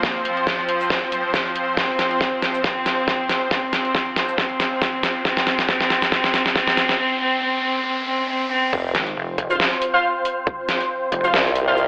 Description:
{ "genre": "heavy wobble dubstep", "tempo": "138 BPM", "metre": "4/4", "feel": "swing 55% on 16ths, half-time", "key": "unclear", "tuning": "A4 = 441 Hz", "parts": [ { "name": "rich cello", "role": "melody", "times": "0.0-8.7 s", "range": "F3 to C4", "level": "-23 LUFS", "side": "equal", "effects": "digital delay" }, { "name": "supersaw pad", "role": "sustained chords", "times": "0.0-11.9 s", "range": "F3 to C5", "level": "-25 LUFS", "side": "equal", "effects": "sidechain pumping, low-pass filter" }, { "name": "dubstep drum kit", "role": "drums", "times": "0.0-11.9 s", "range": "crash cymbal, hi-hat, shaker, snare drum", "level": "-21 LUFS", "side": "equal", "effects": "overdrive" }, { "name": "electronic kick drum", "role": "drums", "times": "0.0-10.6 s", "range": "none", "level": "-25 LUFS", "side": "equal", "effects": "none" }, { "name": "riser and sub drop", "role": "sound effects", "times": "4.6-10.5 s", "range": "none", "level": "-29 LUFS", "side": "equal", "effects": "none" }, { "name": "formant-sweep wobble bass", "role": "bass", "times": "8.7-11.9 s", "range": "F1 to C2", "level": "-20 LUFS", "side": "equal", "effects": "chorus, overdrive" }, { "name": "pulsing pluck wobble bass", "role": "bass", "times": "8.9-11.3 s", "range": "F1 to Ab1", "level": "-25 LUFS", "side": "equal", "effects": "chorus, overdrive" }, { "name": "orchestra-hit-like synth stab", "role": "stabs", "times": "9.5-11.9 s", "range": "F4 to F5", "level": "-20 LUFS", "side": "equal", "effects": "built-in reverb, cassette tape, digital delay" } ], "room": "moderate lush hall reverb, RT60 1.9 s", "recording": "telephone sound", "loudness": "-18 LUFS", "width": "side -31 dB against mid", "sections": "0.0-8.7 A section; 8.7-11.9 B section", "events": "build-up 0.0-8.7; drum fill 0.0-7.0; break 7.0-8.7; drop 8.7-11.9; impact 8.7-10.5", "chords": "0.0 F5" }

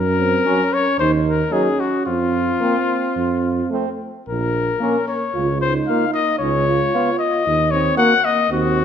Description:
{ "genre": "classical, brass quintet", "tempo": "112 BPM", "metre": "4/4", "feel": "rubato", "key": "Bb minor", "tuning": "A4 = 440 Hz", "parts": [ { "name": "warm trumpet", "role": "melody", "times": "0.0-8.8 s", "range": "F4 to Gb5", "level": "-19 LUFS", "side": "left 5 dB", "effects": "none" }, { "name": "mellow trombone", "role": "accompaniment", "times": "0.0-8.8 s", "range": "Bb3 to F4", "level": "-23 LUFS", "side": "right 4 dB", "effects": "none" }, { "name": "warm tuba", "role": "bass", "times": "0.0-8.8 s", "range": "Bb1 to Gb2", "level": "-23 LUFS", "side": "right 4 dB", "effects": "none" }, { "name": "mellow flugelhorn", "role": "second line", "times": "0.5-8.1 s", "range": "C4 to Gb4", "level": "-27 LUFS", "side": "right 7 dB", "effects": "none" }, { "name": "clear French horn", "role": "accompaniment", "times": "0.5-8.1 s", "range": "Gb3 to Cb4", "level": "-24 LUFS", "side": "left 2 dB", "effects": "none" } ], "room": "wet recital hall reverb, RT60 1.6 s", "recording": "none", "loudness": "-16 LUFS", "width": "side -8 dB against mid", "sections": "0.0-8.8 A section", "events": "none", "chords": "0.0 Gb; 1.0 Ebm; 2.1 Fsus4; 3.2 F; 4.3 Bbm; 5.4 Bbm/Db; 6.4 Db7; 7.5 Ebm" }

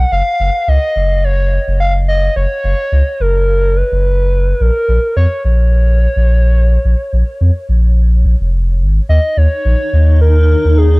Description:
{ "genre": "IDM", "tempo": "107 BPM", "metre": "4/4", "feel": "swing 56% on 16ths", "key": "Eb minor", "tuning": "A4 = 438 Hz", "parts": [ { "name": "warbly nostalgic lead", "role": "melody", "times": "0.0-11.0 s", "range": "Ab4 to F#5", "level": "-17 LUFS", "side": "equal", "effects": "chorus, vintage 12-bit sampler grit, analog delay" }, { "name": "warm sub bass", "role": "bass", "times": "0.0-11.0 s", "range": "F1 to F2", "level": "-10 LUFS", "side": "equal", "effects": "none" }, { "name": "granular cloud pad", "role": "sustained chords", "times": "9.6-11.0 s", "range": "Eb4 to Bb5", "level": "-21 LUFS", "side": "left 2 dB", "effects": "built-in reverb" } ], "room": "digital ambience", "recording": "dry, gritty hardware recording", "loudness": "-10 LUFS", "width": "side -25 dB against mid", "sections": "0.0-9.1 A section; 9.1-11.0 B section", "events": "none", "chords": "0.1 Gb5; 4.6 Bbm; 9.1 Eb7(no3)" }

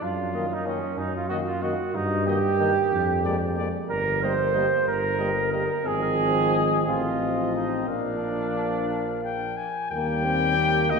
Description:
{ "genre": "classical, brass quintet", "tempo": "61 BPM (dotted quarters)", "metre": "6/8", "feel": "rubato", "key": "Eb major", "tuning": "A4 = 440 Hz", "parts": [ { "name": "warm flugelhorn", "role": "second line", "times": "0.0-11.0 s", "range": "Db4 to C5", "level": "-26 LUFS", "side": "right 4 dB", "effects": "none" }, { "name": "mellow tuba", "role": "bass", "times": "0.0-11.0 s", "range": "G1 to G2", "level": "-29 LUFS", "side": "equal", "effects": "none" }, { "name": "mellow trumpet", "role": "melody", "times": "0.3-11.0 s", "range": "D5 to Ab5", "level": "-31 LUFS", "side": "left 6 dB", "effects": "none" }, { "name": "mellow French horn", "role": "accompaniment", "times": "0.3-11.0 s", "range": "Bb3 to C4", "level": "-31 LUFS", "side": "left 4 dB", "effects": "none" }, { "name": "warm euphonium", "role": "accompaniment", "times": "0.3-11.0 s", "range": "Eb3 to Bb3", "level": "-34 LUFS", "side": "equal", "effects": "none" } ], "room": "wet church reverb, RT60 2.5 s", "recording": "dark, warm production", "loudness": "-22 LUFS", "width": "side -4 dB against mid", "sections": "0.0-9.9 A section; 9.9-11.0 B section", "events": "none", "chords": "0.0 Ebm/Gb; 1.9 Eb/G; 2.9 Bb7/F; 3.9 Eb/G; 5.9 Fm7/Ab; 6.9 F7/A; 7.9 Bb; 9.9 Eb" }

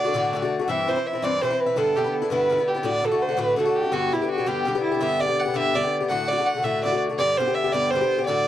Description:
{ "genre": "celtic folk, Celtic jig", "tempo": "111 BPM (dotted quarters)", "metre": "6/8", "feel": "straight", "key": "unclear", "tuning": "A4 = 440 Hz", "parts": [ { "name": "dark fiddle", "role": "melody", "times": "0.0-8.5 s", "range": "E4 to F#5", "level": "-22 LUFS", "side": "right 3 dB", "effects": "none" }, { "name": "Irish bouzouki", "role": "second line", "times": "0.0-0.5 s", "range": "D4", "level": "-38 LUFS", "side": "equal", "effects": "none" }, { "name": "Irish bouzouki", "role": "accompaniment", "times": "0.0-8.5 s", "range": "G2 to G4", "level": "-25 LUFS", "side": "left 5 dB", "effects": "none" } ], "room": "moderate booth ambience, RT60 0.2 s", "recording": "dry, close 1970s-style studio recording", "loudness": "-20 LUFS", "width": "side -12 dB against mid", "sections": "0.7-8.5 A section", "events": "none", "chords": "0.0 D; 0.7 C; 1.8 G6; 2.8 D; 3.9 G; 6.1 D; 7.2 G" }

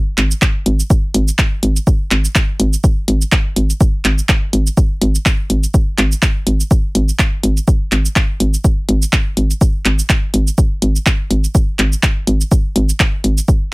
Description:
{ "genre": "minimal techno", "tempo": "124 BPM", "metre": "4/4", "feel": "swing 56% on 16ths", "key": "unclear", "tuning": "A4 = 444 Hz", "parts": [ { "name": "hollow knocking FM bass", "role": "bass", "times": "0.2-13.4 s", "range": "G#1", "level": "-14 LUFS", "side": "equal", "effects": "sidechain pumping" }, { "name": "punchy analog drum machine", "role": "drums", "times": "0.2-13.6 s", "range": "handclaps, hi-hat, shaker", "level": "-18 LUFS", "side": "right 1 dB", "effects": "none" }, { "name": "electronic kick drum", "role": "drums", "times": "0.4-13.6 s", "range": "none", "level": "-13 LUFS", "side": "equal", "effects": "none" } ], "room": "little or no reverb", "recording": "none", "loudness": "-12 LUFS", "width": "side -24 dB against mid", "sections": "0.0-13.7 A section", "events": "none", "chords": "none" }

